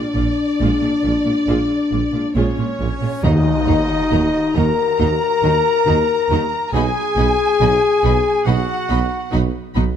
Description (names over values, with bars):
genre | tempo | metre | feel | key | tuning
cinematic, epic orchestral film score | 69 BPM | 4/4 | straight | Eb minor from 3.2 s | A4 = 440 Hz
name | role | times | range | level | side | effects
warm symphonic violin section | melody | 0.0-9.3 s | C#5 to Bb5 | -26 LUFS | equal | none
warm symphonic violin section | second line | 0.0-9.8 s | D5 to B5 | -32 LUFS | left 2 dB | none
dark French horn section | sustained chords | 0.0-9.3 s | C#4 to Bb4 | -19 LUFS | left 5 dB | none
reverse cymbal and sub drop | sound effects | 3.2-6.7 s | none | -27 LUFS | equal | none
warm symphonic cello section | bass | 0.1-9.8 s | A#2 to Eb3 | -24 LUFS | right 2 dB | none
warm symphonic viola section | accompaniment | 0.2-9.8 s | G#3 to Gb4 | -29 LUFS | right 3 dB | none
rich symphonic double bass section | bass | 0.2-9.8 s | A#1 to Eb2 | -23 LUFS | right 3 dB | none
warm tuba | bass | 0.2-9.9 s | A#1 to Eb2 | -25 LUFS | right 5 dB | none
concert flute | second line | 2.4-9.3 s | C#5 to Bb5 | -26 LUFS | left 1 dB | none
mellow trumpet | stabs | 2.4-9.3 s | C#4 to Bb4 | -25 LUFS | right 1 dB | none
tam-tam | percussion | 3.2-6.7 s | none | -30 LUFS | left 1 dB | none
timpani | percussion | 3.2-4.5 s | Eb3 | -22 LUFS | left 1 dB | none
room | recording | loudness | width
moderate scoring stage reverb, RT60 1.6 s | none | -15 LUFS | side -8 dB against mid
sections
0.0-3.2 A section; 3.2-10.0 B section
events
reverse cymbal 3.2; band accent 3.2-4.1; impact 3.2-6.7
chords
0.0 A#7; 3.2 Ebm; 6.7 B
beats
0.60 1.48 2.36 | 3.24 4.12 5.00 5.87 | 6.73 7.60 8.46 9.32